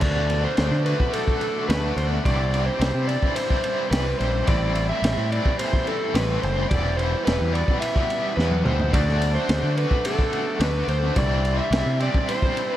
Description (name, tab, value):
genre	psychedelic rock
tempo	108 BPM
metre	4/4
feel	straight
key	unclear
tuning	A4 = 440 Hz
part	overdriven slide guitar	melody	0.0-12.8 s	A4 to E5	-26 LUFS	equal	tape echo
part	rich studio string section	sustained chords	0.0-12.8 s	F#3 to A4	-35 LUFS	right 5 dB	none
part	biting overdriven guitar	riff	0.0-12.8 s	E2 to F#4	-28 LUFS	left 1 dB	tremolo, tape echo
part	growling picked electric bass	bass	0.0-12.1 s	E1 to D3	-23 LUFS	equal	overdrive
part	tanpura	drone	0.0-6.9 s	E2 to E3	-43 LUFS	equal	none
part	crunchy breakbeat drum kit	drums	0.0-12.7 s	crash cymbal, kick drum, ride cymbal, snare drum, toms	-25 LUFS	equal	tape echo
room	light reverb, small room ambience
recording	echo-heavy mix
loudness	-20 LUFS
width	side -12 dB against mid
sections	0.0-12.8 A section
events	drum fill 8.4-8.9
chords	0.0 D; 2.3 Cadd9; 4.5 Am7; 6.7 Emadd9; 8.9 D; 11.2 Cadd9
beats	| 0.03 0.58 1.14 1.70 | 2.25 2.81 3.36 3.92 | 4.48 5.03 5.59 6.14 | 6.70 7.26 7.82 8.37 | 8.93 9.49 10.05 10.61 | 11.16 11.72 12.28